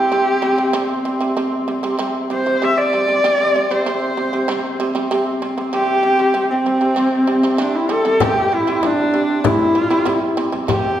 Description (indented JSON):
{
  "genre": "mongolian traditional, Mongolian folk",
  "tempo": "96 BPM",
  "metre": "4/4",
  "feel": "straight",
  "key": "C gong mode",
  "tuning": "A4 = 440 Hz",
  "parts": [
    { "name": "clear horsehead fiddle", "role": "melody", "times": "0.0-11.0 s", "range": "C4 to E5", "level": "-16 LUFS", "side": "equal", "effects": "none" },
    { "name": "shamisen", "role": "arpeggios", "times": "0.0-10.9 s", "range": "C3 to G3", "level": "-21 LUFS", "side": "right 3 dB", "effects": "none" },
    { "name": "clear horsehead fiddle", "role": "drone", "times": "0.0-8.3 s", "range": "C4", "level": "-26 LUFS", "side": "left 1 dB", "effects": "none" },
    { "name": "frame drum", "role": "percussion", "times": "8.2-10.8 s", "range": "none", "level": "-22 LUFS", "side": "left 4 dB", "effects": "none" }
  ],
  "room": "wet recital hall reverb, RT60 1.6 s",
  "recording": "recorded in a church or concert hall",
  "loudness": "-15 LUFS",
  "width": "side -11 dB against mid",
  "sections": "0.0-8.2 A section; 8.2-11.0 B section",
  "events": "none",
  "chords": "0.0 C5"
}